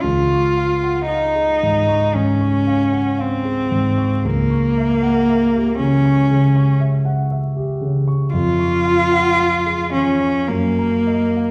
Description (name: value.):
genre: classical, romantic duo for cello and grand piano.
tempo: 52-60 BPM.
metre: 4/4.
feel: rubato.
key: Db major.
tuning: A4 = 440 Hz.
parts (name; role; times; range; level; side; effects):
rich cello; melody; 0.0-11.5 s; Bb3 to F4; -19 LUFS; equal; none.
dark concert grand piano; accompaniment; 0.0-11.5 s; Db2 to Db6; -21 LUFS; equal; none.
room: wet recital hall reverb, RT60 1.4 s.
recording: heard from further back in the room, vinyl crackle.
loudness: -17 LUFS.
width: mono.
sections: 0.0-11.5 A section.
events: none.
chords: 0.0 Db; 4.2 Dbdim7; 8.3 Db/F; 10.5 Ebm/Gb.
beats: | 0.03 1.08 2.15 3.20 | 4.25 5.28 6.29 7.31 | 8.32 9.38 10.49.